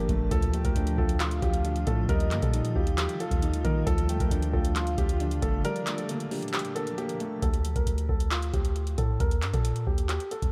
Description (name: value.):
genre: hip hop, trap.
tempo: 135 BPM.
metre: 4/4.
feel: half-time.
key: D phrygian.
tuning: A4 = 440 Hz.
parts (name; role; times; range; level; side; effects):
felt-muted upright piano; melody; 0.0-10.5 s; F4 to Bb4; -37 LUFS; equal; low-pass filter, diffuse ambient delay.
soft octave-layered synth lead; second line; 0.0-7.4 s; Bb4 to G5; -41 LUFS; equal; chorus, phaser, diffuse ambient delay.
dark concert grand piano; accompaniment; 0.0-7.4 s; F3 to F4; -36 LUFS; equal; none.
granular cloud pad; sustained chords; 0.0-7.4 s; Bb2 to G4; -40 LUFS; equal; built-in reverb.
long sustained 808-style bass; bass; 0.0-10.5 s; G1 to Eb3; -31 LUFS; equal; none.
booming analog drum machine; drums; 0.1-10.5 s; handclaps, hi-hat, kick drum; -31 LUFS; equal; none.
room: moderate church reverb, RT60 3.1 s.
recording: dreamy mix soaked in reverb.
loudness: -27 LUFS.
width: mono.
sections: 0.0-7.4 A section; 7.4-10.5 B section.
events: break 5.6-7.4.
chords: 0.3 Dm; 2.1 Ebadd9; 3.9 Dm; 5.6 Gmadd9; 7.4 D5; 9.2 Eb.